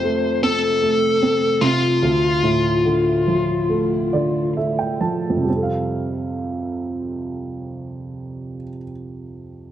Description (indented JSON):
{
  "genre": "pop",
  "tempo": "65-77 BPM",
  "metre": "4/4",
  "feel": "straight",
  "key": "F major",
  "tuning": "A4 = 439 Hz",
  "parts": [
    { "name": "bluesy overdriven lead guitar", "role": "melody", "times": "0.0-4.5 s", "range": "F4 to C5", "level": "-20 LUFS", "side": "left 3 dB", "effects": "distortion, tape echo" },
    { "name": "warm upright piano", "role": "accompaniment", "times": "0.0-9.7 s", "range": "D2 to A5", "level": "-21 LUFS", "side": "right 3 dB", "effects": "none" }
  ],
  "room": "light reverb, small room ambience",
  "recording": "dry, close 1970s-style studio recording",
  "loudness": "-17 LUFS",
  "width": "side -11 dB against mid",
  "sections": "0.0-5.5 A section; 5.5-9.2 B section",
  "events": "slowing down 0.0-5.5; upright piano fill 3.7-5.5",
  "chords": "0.0 F; 2.0 Dm; 5.5 Fadd9"
}